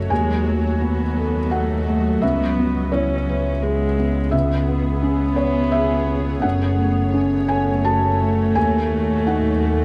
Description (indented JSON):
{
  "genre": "neoclassical piano and strings",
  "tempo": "85 BPM",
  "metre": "3/4",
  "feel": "rubato",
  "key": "C# minor",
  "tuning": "A4 = 442 Hz",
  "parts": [
    { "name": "felt-muted upright piano", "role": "accompaniment", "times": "0.0-9.8 s", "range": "C#2 to A5", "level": "-23 LUFS", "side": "equal", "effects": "none" },
    { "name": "warm viola", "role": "accompaniment", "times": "0.0-9.8 s", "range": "F#3 to C#4", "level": "-27 LUFS", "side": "equal", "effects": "none" },
    { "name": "granular cloud pad", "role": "sustained chords", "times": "0.0-9.8 s", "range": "F#3 to E5", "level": "-31 LUFS", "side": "equal", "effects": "built-in reverb" },
    { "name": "rich double bass", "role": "bass", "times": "0.0-9.8 s", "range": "F#1 to D#2", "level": "-25 LUFS", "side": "equal", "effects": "none" }
  ],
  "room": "moderate recital hall reverb, RT60 1.6 s",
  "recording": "dark, warm production",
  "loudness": "-20 LUFS",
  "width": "mono",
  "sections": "0.0-9.8 A section",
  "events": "none",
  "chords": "0.1 D#dim; 2.2 C#m7; 6.4 F#m; 8.6 D#dim",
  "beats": "| 0.10 0.81 1.52 | 2.22 2.93 3.63 | 4.33 5.03 5.73 | 6.44 7.14 7.85 | 8.56 9.27"
}